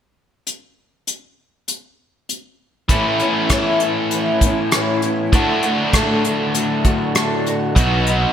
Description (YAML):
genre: folk rock and heartland rock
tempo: 99 BPM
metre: 4/4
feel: straight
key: A major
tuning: A4 = 440 Hz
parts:
  - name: soft brush drum kit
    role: drums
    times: 0.5-8.2 s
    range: hi-hat, kick drum, rim click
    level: -19 LUFS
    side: equal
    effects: gated reverb
  - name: picked twelve-string acoustic guitar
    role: accompaniment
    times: 2.9-8.3 s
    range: A2 to F#4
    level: -20 LUFS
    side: left 2 dB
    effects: analog chorus
  - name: biting overdriven guitar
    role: riff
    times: 2.9-8.3 s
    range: A2 to F#4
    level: -19 LUFS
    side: right 1 dB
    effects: none
  - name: fingered electric bass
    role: bass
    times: 7.8-8.2 s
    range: B1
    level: -19 LUFS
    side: right 1 dB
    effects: none
room: moderate plate reverb, RT60 1.4 s, small room ambience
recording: bright 1980s-style digital production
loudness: -15 LUFS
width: side -9 dB against mid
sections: 0.5-2.9 A section; 2.9-8.3 B section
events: none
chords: 0.5 N.C.; 2.9 Aadd9; 5.3 D/A; 7.8 B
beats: | 0.47 1.08 1.69 2.29 | 2.90 3.51 4.12 4.73 | 5.33 5.94 6.55 7.16 | 7.76